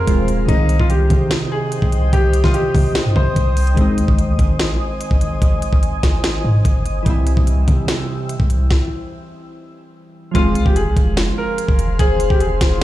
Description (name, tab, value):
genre	hip hop, trap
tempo	146 BPM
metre	4/4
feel	half-time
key	F minor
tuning	A4 = 440 Hz
part	clear concert grand piano	melody	0.0-3.7, 10.3-12.8 s	Eb4 to C5	-22 LUFS	left 1 dB	low-pass filter, tape echo
part	glassy digital keys	accompaniment	0.0-12.8 s	Eb3 to F4	-25 LUFS	equal	chorus, phaser, low-pass filter
part	glassy FM pad	sustained chords	0.0-12.8 s	Ab4 to E6	-28 LUFS	left 1 dB	ensemble chorus, built-in reverb
part	long sustained 808-style bass	bass	0.0-12.8 s	Eb1 to C3	-18 LUFS	equal	none
part	trap drum kit	drums	0.1-12.8 s	hi-hat, kick drum, snare drum	-17 LUFS	equal	none
part	soft octave-layered synth lead	second line	10.3-12.8 s	Ab4 to C5	-25 LUFS	left 5 dB	chorus, phaser, tape echo
room	digital ambience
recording	played on a big sound system in a bare room, large studio reverb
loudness	-14 LUFS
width	side -15 dB against mid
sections	0.0-10.3 A section; 10.3-12.8 B section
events	stop 8.7-10.3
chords	0.5 Cm; 3.8 Ab; 7.1 C; 10.3 Fm